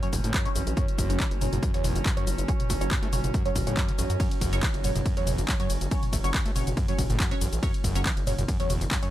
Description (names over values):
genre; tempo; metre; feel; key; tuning
driving peak-time techno; 140 BPM; 4/4; straight; unclear; A4 = 440 Hz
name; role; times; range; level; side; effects
screaming distorted acid line; riff; 0.0-9.1 s; E2 to A3; -33 LUFS; equal; distortion, chorus, sidechain pumping
filtered dub chord stab; stabs; 0.0-9.1 s; F#3 to C#5; -34 LUFS; right 2 dB; phaser, wide subtle chorus, sidechain pumping, dub echo
metallic inharmonic drone; drone; 0.0-9.1 s; F#3 to C#4; -36 LUFS; right 2 dB; chorus, built-in reverb, sidechain pumping
techno drum kit; drums; 0.0-9.1 s; handclaps, hi-hat, ride cymbal, shaker, toms; -32 LUFS; equal; overdrive
gritty driven synth bass; bass; 0.1-8.9 s; F#1 to F#2; -29 LUFS; equal; sidechain pumping
electronic kick drum; drums; 0.1-9.0 s; none; -27 LUFS; equal; overdrive
room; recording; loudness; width
little or no reverb; none; -24 LUFS; side -14 dB against mid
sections
0.0-9.1 A section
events
none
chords
0.0 F#5